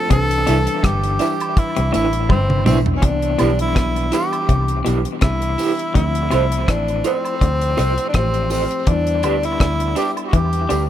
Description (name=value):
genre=lovers rock reggae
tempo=82 BPM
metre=4/4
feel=swing 55% on 16ths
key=C major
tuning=A4 = 440 Hz
part: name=breathy tenor saxophone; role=melody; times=0.0-10.8 s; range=C4 to A4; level=-21 LUFS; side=left 1 dB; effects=dub echo
part: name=tine electric piano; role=accompaniment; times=0.0-10.9 s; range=E3 to B4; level=-27 LUFS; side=left 1 dB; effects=medium stereo tremolo
part: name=twangy electric guitar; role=riff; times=0.1-10.8 s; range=G2 to E3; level=-26 LUFS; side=left 5 dB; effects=spring reverb, dub echo
part: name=vintage muted fingered electric bass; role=bass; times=0.1-10.9 s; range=G1 to E2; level=-21 LUFS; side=equal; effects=none
part: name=deep reggae drum kit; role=drums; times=0.1-10.9 s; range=hi-hat, kick drum, rim click, toms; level=-20 LUFS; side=equal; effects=none
part: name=electric guitar through a small old amp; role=stabs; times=0.5-10.8 s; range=D4 to C5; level=-24 LUFS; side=right 5 dB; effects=tremolo, dub echo
part: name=tambourine and woodblock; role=percussion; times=0.5-10.9 s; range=none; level=-33 LUFS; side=right 6 dB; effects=dub echo
room=light reverb, small room ambience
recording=none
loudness=-16 LUFS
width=side -11 dB against mid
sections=0.0-3.0 A section; 3.0-10.9 B section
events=drum fill 2.3-3.0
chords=0.1 Cmaj9; 3.0 Cmaj7; 5.9 Dm7; 8.9 Em7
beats=| 0.11 0.84 1.57 2.30 | 3.03 3.76 4.49 5.22 | 5.95 6.68 7.41 8.14 | 8.87 9.60 10.33